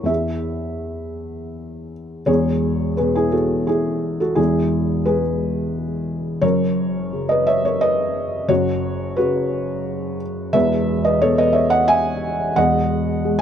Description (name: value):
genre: neoclassical minimalist piano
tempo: 87 BPM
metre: 3/4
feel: rubato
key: E major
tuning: A4 = 437 Hz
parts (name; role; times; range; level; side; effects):
- felt-muted upright piano; solo; 0.0-13.4 s; E1 to G#5; -18 LUFS; equal; none
room: light reverb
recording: close, detailed microphones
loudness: -17 LUFS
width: side -9 dB against mid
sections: 0.0-2.3 A section; 2.3-13.4 B section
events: none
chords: 0.1 E; 6.4 F#; 8.5 Bsus2/F#; 10.5 E